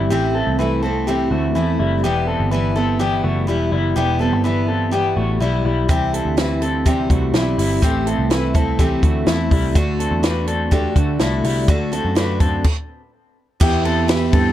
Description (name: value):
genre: jangly indie pop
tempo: 124 BPM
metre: 4/4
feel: straight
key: E minor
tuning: A4 = 440 Hz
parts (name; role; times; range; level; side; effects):
- picked steel-string acoustic guitar; accompaniment; 0.0-14.5 s; A2 to G4; -22 LUFS; right 5 dB; plate reverb
- electric guitar through a small old amp; arpeggios; 0.0-14.5 s; G3 to B4; -22 LUFS; left 6 dB; harmonic tremolo, plate reverb
- vintage muted picked electric bass; bass; 0.0-14.5 s; E1 to G2; -22 LUFS; equal; none
- compact cocktail drum kit; drums; 5.9-14.4 s; crash cymbal, hi-hat, kick drum, ride cymbal, snare drum; -18 LUFS; equal; none
room: light reverb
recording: dark, warm production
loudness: -16 LUFS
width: side -12 dB against mid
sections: 0.0-13.6 A section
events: stop 12.7-13.6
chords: 0.1 Am; 2.0 Em; 5.9 C; 7.8 Am; 9.8 D; 13.6 Em